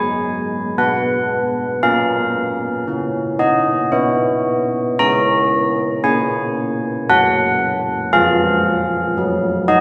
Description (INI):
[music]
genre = classical, tune for church bells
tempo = 57 BPM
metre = 3/4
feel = straight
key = unclear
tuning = A4 = 440 Hz
[part]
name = old church bells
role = solo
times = 0.0-9.8 s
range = E#3 to A#5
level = -17 LUFS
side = equal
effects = none
[sound]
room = wet church reverb, RT60 2.7 s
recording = heard from further back in the room, nothing above 10.6 kHz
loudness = -17 LUFS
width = mono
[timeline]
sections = 0.0-9.8 A section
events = none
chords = 0.0 F#; 1.8 A#madd11; 5.0 C#5; 8.1 D#madd9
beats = 0.78 | 1.82 2.88 3.94 | 5.02 6.06 7.10 | 8.14 9.17